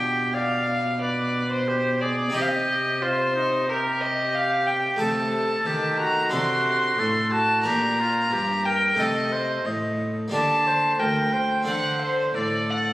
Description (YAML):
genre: classical, baroque-style sonata movement with continuo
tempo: 90 BPM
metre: 4/4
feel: straight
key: C minor, G minor from 5.0 s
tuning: A4 = 441 Hz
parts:
  - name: warm violin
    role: melody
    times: 0.0-12.9 s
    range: Bb4 to C6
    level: -24 LUFS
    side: left 1 dB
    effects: none
  - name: warm oboe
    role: second line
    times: 0.0-12.9 s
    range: Eb4 to Eb5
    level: -26 LUFS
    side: right 1 dB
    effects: none
  - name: harpsichord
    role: accompaniment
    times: 0.0-12.9 s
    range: D2 to Bb4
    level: -31 LUFS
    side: left 1 dB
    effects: none
  - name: dark cello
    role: bass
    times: 0.0-12.9 s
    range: D2 to Eb3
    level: -29 LUFS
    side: equal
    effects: none
room: moderate recital hall reverb, RT60 1.6 s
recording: recorded on a phone in the room, club reverb, compression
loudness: -21 LUFS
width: side -16 dB against mid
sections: 0.0-12.9 A section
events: none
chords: 0.0 G7/B; 2.3 Cm; 5.0 Adim/C; 6.3 D7/C; 7.7 Gm/Bb; 9.0 Adim/C; 10.3 Gm/D; 11.7 D5